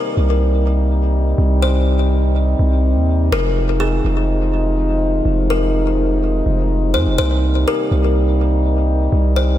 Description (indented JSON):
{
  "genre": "hip hop",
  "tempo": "124 BPM",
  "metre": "4/4",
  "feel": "half-time",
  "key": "F minor",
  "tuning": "A4 = 440 Hz",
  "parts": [
    { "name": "kalimba", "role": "melody", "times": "0.0-9.6 s", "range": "Ab4 to C5", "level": "-23 LUFS", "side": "left 4 dB", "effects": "ping-pong delay" },
    { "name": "mellow French horn section", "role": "sustained chords", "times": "0.0-9.6 s", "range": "C3 to Eb4", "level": "-20 LUFS", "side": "left 1 dB", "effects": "none" },
    { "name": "long sustained 808-style bass", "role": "bass", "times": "0.2-9.6 s", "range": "F1 to F2", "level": "-16 LUFS", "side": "equal", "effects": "none" }
  ],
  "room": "light reverb, small room ambience",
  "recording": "none",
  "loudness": "-14 LUFS",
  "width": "side -12 dB against mid",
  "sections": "0.0-9.6 A section",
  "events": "none",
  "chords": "0.0 Cm7; 3.3 Fm7; 7.2 Cm7"
}